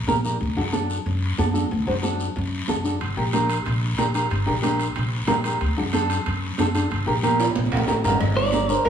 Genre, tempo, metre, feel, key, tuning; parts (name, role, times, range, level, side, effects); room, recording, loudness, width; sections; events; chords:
latin, cumbia; 185 BPM; 4/4; straight; G harmonic minor; A4 = 440 Hz
nylon-string guitar; accompaniment; 0.1-8.9 s; D4 to C5; -24 LUFS; equal
upright bass; bass; 0.1-8.9 s; G1 to F#2; -24 LUFS; equal
congas; percussion; 0.1-8.9 s; -30 LUFS; right 4 dB
guiro; percussion; 0.1-8.9 s; -34 LUFS; left 3 dB
timbales and cowbell; percussion; 3.0-8.9 s; -29 LUFS; right 4 dB
clean electric guitar; melody; 8.4-8.9 s; Bb4 to D5; -20 LUFS; right 2 dB; spring reverb, slapback echo
moderate large studio reverb, RT60 1.3 s; small room ambience; -20 LUFS; side -8 dB against mid
0.0-8.2 A section
drum fill 7.4-8.2
0.4 D; 3.0 Gm; 5.6 D; 6.9 Gm